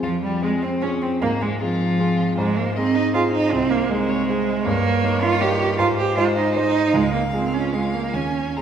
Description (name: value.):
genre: quick classical-period movement for piano trio.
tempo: 156 BPM.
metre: 3/4.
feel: rubato.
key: F minor.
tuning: A4 = 440 Hz.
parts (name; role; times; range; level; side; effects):
rich violin; melody; 0.0-8.6 s; G3 to Bb5; -29 LUFS; left 3 dB; none.
rich cello; second line; 0.0-8.6 s; F3 to G4; -20 LUFS; right 4 dB; none.
warm grand piano; accompaniment; 0.0-8.6 s; C2 to Db5; -23 LUFS; equal; none.
room: wet scoring stage reverb, RT60 1.9 s.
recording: recorded in a church or concert hall.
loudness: -18 LUFS.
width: side -8 dB against mid.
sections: 0.0-8.6 A section.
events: none.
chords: 0.0 Fm; 1.2 Fm/Ab; 2.4 Ab; 3.5 Ab/C; 4.7 Eb7/G; 5.8 Ab; 6.9 Db.